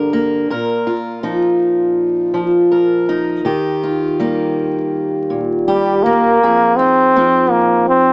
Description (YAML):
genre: folk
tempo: 81 BPM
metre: 4/4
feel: straight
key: unclear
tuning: A4 = 440 Hz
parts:
  - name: fingerpicked steel-string acoustic guitar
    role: accompaniment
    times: 0.0-8.1 s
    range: F2 to Bb4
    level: -15 LUFS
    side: equal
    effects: none
  - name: brilliant trombone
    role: melody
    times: 5.7-8.1 s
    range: G3 to C4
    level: -11 LUFS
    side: equal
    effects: none
room: moderate small room reverb, RT60 0.5 s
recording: vinyl crackle, small speaker sound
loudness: -12 LUFS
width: side -35 dB against mid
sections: 0.0-8.1 A section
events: none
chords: 0.0 Gm; 0.5 Bbsus4; 3.5 Ebadd9; 6.4 Fm7